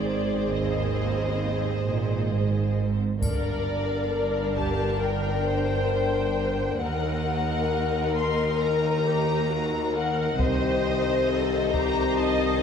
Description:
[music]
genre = cinematic, epic orchestral film score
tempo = 67 BPM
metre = 4/4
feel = straight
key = G harmonic minor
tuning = A4 = 439 Hz
[part]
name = warm symphonic violin section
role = melody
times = 0.0-12.6 s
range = D5 to C6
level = -32 LUFS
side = left 4 dB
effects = none
[part]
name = rich symphonic violin section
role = second line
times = 0.0-12.6 s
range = C4 to C5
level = -33 LUFS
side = left 4 dB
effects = none
[part]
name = rich symphonic viola section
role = accompaniment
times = 0.0-12.6 s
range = Gb4 to Eb5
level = -31 LUFS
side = right 2 dB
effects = none
[part]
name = mellow French horn section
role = sustained chords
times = 0.0-12.6 s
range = D3 to C5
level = -29 LUFS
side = left 7 dB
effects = none
[part]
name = clear symphonic cello section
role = bass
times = 0.0-12.6 s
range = C2 to Bb2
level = -31 LUFS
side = right 3 dB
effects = none
[part]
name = rich symphonic double bass section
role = bass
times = 0.0-12.6 s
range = G1 to Eb2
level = -29 LUFS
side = right 4 dB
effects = none
[part]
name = taiko ensemble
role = drums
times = 3.2-5.0, 10.4-12.2 s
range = none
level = -31 LUFS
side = equal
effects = none
[part]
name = triangle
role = percussion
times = 3.2-5.0 s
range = none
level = -45 LUFS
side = left 2 dB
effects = none
[sound]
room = wet concert hall reverb, RT60 1.9 s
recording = none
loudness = -23 LUFS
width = side -7 dB against mid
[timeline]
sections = 0.0-12.6 A section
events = none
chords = 0.0 Ab; 3.2 Gm; 6.8 Ebm; 10.4 Cm

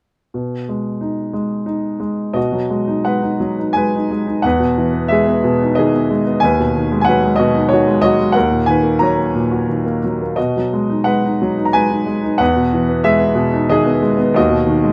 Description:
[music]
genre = classical, lyrical solo piano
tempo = 85-96 BPM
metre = 3/4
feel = rubato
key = B major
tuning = A4 = 440 Hz
[part]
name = warm grand piano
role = solo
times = 0.3-14.9 s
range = D#2 to A#5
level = -16 LUFS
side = equal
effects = none
[sound]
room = light reverb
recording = close, detailed microphones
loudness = -16 LUFS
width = mono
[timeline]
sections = 0.3-2.4 A section; 2.4-14.9 B section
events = none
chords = 0.3 B6; 4.4 Emaj7; 6.4 B6/D#; 8.4 D#m7; 10.4 B6; 12.4 Emaj7; 14.4 B6/D#

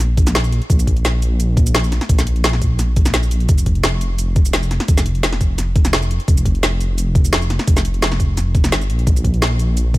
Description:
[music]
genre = liquid drum and bass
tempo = 172 BPM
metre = 4/4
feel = straight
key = unclear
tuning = A4 = 441 Hz
[part]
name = dark detuned saw bass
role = bass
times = 0.0-10.0 s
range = F1 to Bb1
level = -17 LUFS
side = equal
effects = none
[part]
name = drum and bass drum kit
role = drums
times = 0.0-10.0 s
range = hi-hat, shaker, snare drum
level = -20 LUFS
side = equal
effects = overdrive
[part]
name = electronic kick drum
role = drums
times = 0.2-10.0 s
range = none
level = -15 LUFS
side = equal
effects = none
[sound]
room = little or no reverb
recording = none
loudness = -14 LUFS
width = side -19 dB against mid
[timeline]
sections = 0.0-10.0 A section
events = none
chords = none

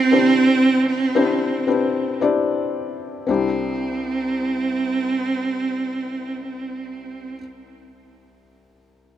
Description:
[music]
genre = pop ballad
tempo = 56 BPM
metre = 4/4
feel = straight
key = C major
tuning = A4 = 441 Hz
[part]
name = clear cello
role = melody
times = 0.0-7.4 s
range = C4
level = -20 LUFS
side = right 3 dB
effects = none
[part]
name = felt-muted upright piano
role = accompaniment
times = 0.0-9.2 s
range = C2 to D5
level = -22 LUFS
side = left 5 dB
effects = none
[sound]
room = moderate lush hall reverb, RT60 2.9 s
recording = rough home demo mix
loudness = -18 LUFS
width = side -11 dB against mid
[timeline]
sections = 0.0-3.3 A section; 3.3-7.6 B section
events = slowing down 0.0-3.3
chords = 0.0 Cadd9

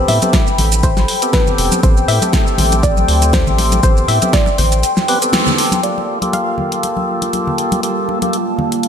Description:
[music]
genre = deep house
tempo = 120 BPM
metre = 4/4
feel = swing 55% on 16ths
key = G dorian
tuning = A4 = 439 Hz
[part]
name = soft round pluck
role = melody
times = 0.0-7.5 s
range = B4 to F5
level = -22 LUFS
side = left 1 dB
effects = chorus, diffuse ambient delay
[part]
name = deep dark ambient pad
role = sustained chords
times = 0.0-8.9 s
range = G3 to C6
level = -22 LUFS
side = left 2 dB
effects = chorus, built-in reverb, sidechain pumping
[part]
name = tonewheel organ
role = stabs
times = 0.0-8.4 s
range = A3 to B4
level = -20 LUFS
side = right 1 dB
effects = slow rotary speaker, sidechain pumping, low-pass filter, diffuse ambient delay
[part]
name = round analog bass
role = bass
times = 0.0-4.8 s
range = E1 to A2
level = -16 LUFS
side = equal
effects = sidechain pumping
[part]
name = warbly tape-like pad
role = texture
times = 0.0-8.9 s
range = Bb3 to C6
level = -24 LUFS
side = left 1 dB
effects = chorus, built-in reverb, sidechain pumping
[part]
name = deep house drum kit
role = drums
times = 0.1-8.9 s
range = hi-hat, shaker, snare drum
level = -19 LUFS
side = equal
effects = none
[part]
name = congas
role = percussion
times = 0.1-8.7 s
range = none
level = -23 LUFS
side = left 2 dB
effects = none
[part]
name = electronic kick drum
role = drums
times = 0.3-4.4 s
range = none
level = -15 LUFS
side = equal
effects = none
[sound]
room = moderate lush hall reverb, RT60 2.2 s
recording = dreamy mix soaked in reverb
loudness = -12 LUFS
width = side -8 dB against mid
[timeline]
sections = 0.0-5.8 A section; 5.8-8.9 B section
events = band accent 5.3; filter sweep on tonewheel organ 5.8-8.9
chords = 0.0 Am9; 5.8 Gm9

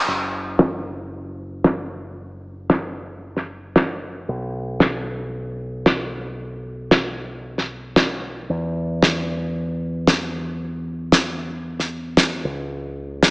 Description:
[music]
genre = nu-disco, nu disco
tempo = 114 BPM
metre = 4/4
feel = swing 53% on 16ths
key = unclear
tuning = A4 = 443 Hz
[part]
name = fingered electric bass with an envelope filter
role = bass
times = 0.1-13.3 s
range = F#1 to E2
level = -29 LUFS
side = equal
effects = none
[part]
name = snare drum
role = drums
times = 0.6-13.3 s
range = none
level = -18 LUFS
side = equal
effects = low-pass filter on hats, studio reverb, low-pass filter on snare, low-pass filter on perc, low-pass filter on room
[sound]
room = wet lush hall reverb, RT60 2.2 s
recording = small speaker sound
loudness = -20 LUFS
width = side -27 dB against mid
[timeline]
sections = 0.1-13.3 A section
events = filter sweep on drum 0.1-13.3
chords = none

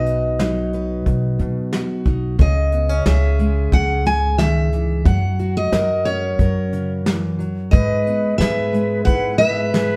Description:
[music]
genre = folk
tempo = 90 BPM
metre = 4/4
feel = straight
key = unclear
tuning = A4 = 445 Hz
[part]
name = picked steel-string acoustic guitar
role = melody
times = 0.0-10.0 s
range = C#5 to G#5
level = -24 LUFS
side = equal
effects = none
[part]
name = fingerpicked plugged-in steel-string acoustic guitar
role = accompaniment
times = 0.0-10.0 s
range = G#2 to B4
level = -26 LUFS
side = equal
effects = none
[part]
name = upright bass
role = bass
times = 0.0-10.0 s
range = B1 to B2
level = -23 LUFS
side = equal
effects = none
[part]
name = soft brush drum kit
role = drums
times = 0.1-9.9 s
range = hi-hat, kick drum, snare drum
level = -21 LUFS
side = equal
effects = none
[part]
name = silver concert flute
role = second line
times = 7.7-10.0 s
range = B4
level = -25 LUFS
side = equal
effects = none
[sound]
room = wet studio reverb, RT60 0.9 s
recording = heard from further back in the room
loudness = -19 LUFS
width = mono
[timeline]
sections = 0.0-2.4 A section; 2.4-10.0 B section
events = none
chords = 0.0 B; 2.4 C#madd9; 5.1 F#; 7.7 E/G#

